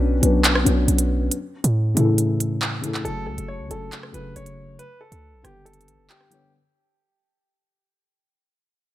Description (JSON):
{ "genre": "hip hop, drill", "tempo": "138 BPM", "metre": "4/4", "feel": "half-time", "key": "unclear", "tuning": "A4 = 438 Hz", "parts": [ { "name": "felt-muted upright piano", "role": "accompaniment", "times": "0.0-6.6 s", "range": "C#3 to C#5", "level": "-24 LUFS", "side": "left 3 dB", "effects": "none" }, { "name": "hard-hitting 808-style bass", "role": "bass", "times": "0.0-6.1 s", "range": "F#1 to A2", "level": "-22 LUFS", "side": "right 1 dB", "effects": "none" }, { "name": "drill drum kit", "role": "drums", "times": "0.2-6.4 s", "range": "handclaps, hi-hat, rim click", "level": "-22 LUFS", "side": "right 1 dB", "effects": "none" }, { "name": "clear concert grand piano", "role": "melody", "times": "3.0-6.5 s", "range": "G4 to C#5", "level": "-39 LUFS", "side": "equal", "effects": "tape echo" } ], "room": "little or no reverb", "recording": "none", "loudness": "-18 LUFS", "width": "side -14 dB against mid", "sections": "0.0-6.5 A section", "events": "break 0.0-3.1; fade-out 0.0-6.5", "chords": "0.0 Bmadd9; 1.3 A; 3.1 F#m; 4.8 G" }